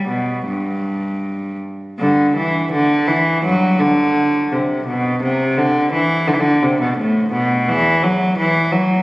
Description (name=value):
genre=classical, baroque-style suite movement for unaccompanied cello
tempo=77-87 BPM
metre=4/4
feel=rubato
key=G major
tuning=A4 = 440 Hz
part: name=rich cello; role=solo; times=0.0-9.0 s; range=E2 to F#3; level=-15 LUFS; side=equal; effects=none
room=wet church reverb, RT60 3.0 s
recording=recorded on a phone in the room, studio reverb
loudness=-14 LUFS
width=side -19 dB against mid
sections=0.0-2.0 A section; 2.0-9.0 B section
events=none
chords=none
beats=0.46 1.21 | 1.98 2.71 3.44 4.16 | 4.87 5.58 6.28 6.98 | 7.69 8.38